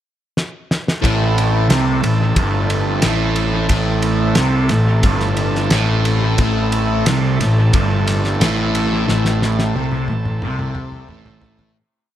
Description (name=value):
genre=psychedelic rock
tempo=89 BPM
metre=4/4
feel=straight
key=A minor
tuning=A4 = 440 Hz
part: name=cloth-damped thuddy drum kit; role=drums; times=0.4-11.8 s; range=kick drum, ride cymbal, snare drum, toms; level=-21 LUFS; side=equal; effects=dub echo
part: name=combo organ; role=sustained chords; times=1.0-11.7 s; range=A3 to A4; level=-25 LUFS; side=right 4 dB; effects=none
part: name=fuzz guitar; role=riff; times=1.0-11.8 s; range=G2 to C3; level=-18 LUFS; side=equal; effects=distortion, phaser, dub echo
part: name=fuzz picked electric bass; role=bass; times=1.0-11.7 s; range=G1 to C2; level=-20 LUFS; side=equal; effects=overdrive
room=small room ambience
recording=echo-heavy mix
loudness=-14 LUFS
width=side -11 dB against mid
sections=0.0-1.0 pickup bar; 1.0-11.8 riff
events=drum fill 0.4-1.0, 9.1-11.8; fade-out 9.1-11.8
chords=0.0 N.C.; 1.0 Am